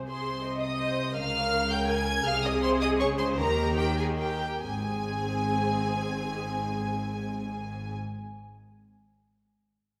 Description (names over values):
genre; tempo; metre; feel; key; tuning
quick classical-period movement for string orchestra; 138-167 BPM; 3/4; straight; Ab major; A4 = 440 Hz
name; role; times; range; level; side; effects
dark symphonic viola section; accompaniment; 0.0-7.9 s; C4 to Eb5; -36 LUFS; equal; none
warm symphonic cello section; bass; 0.0-7.9 s; Ab2 to Eb3; -36 LUFS; equal; none
warm symphonic double bass section; bass; 0.0-7.9 s; Ab1 to Eb2; -36 LUFS; equal; none
warm symphonic violin section; melody; 0.1-7.9 s; G5 to Ab6; -36 LUFS; equal; none
warm studio violin section; second line; 0.1-7.9 s; G4 to Ab5; -35 LUFS; equal; none
room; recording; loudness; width
wet scoring stage reverb, RT60 1.9 s; recorded in a church or concert hall; -29 LUFS; mono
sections
0.0-4.6 A section; 4.6-7.2 B section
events
slowing down 1.7-4.6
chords
0.0 Ab/C; 1.2 Db; 2.3 Ab/C; 3.0 Db5; 3.4 Eb; 4.6 Ab